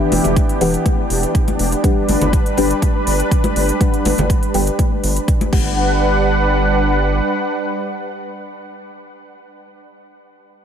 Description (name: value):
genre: progressive house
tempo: 122 BPM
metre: 4/4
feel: straight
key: G major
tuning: A4 = 442 Hz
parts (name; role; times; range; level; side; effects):
- lush unison pad; sustained chords; 0.0-9.3 s; E3 to F#5; -19 LUFS; right 1 dB; chorus, sidechain pumping
- deep mellow chord stab; stabs; 0.0-9.3 s; E3 to G5; -23 LUFS; left 2 dB; chorus, phaser, sidechain pumping, ping-pong delay
- round analog bass; bass; 0.1-7.2 s; E1 to G1; -20 LUFS; equal; sidechain pumping
- big-room dance drum kit; drums; 0.1-5.6 s; crash cymbal, hi-hat; -27 LUFS; left 1 dB; none
- congas; percussion; 0.1-5.5 s; none; -25 LUFS; left 4 dB; sidechain pumping on perc
- electronic kick drum; drums; 0.4-5.6 s; none; -16 LUFS; equal; none
room: digital ambience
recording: none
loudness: -14 LUFS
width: side -8 dB against mid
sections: 0.0-5.8 A section; 5.8-9.7 B section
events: none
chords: 0.0 Em7; 1.8 Gmaj7